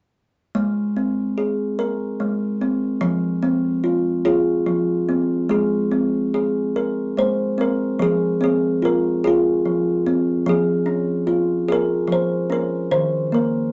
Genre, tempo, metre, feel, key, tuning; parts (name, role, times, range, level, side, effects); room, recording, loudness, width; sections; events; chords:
children's music, lullaby; 48 BPM (dotted quarters); 6/8; rubato; Ab major; A4 = 440 Hz
kalimba; solo; 0.5-13.7 s; Eb3 to C5; -20 LUFS; equal
moderate club reverb, RT60 0.6 s; nothing above 7.7 kHz; -20 LUFS; mono
0.5-5.5 A section; 5.5-13.7 B section
0.5 Abadd9; 3.0 Fm; 5.5 Abadd9; 8.0 Fm; 10.5 Db/F; 12.9 Eb5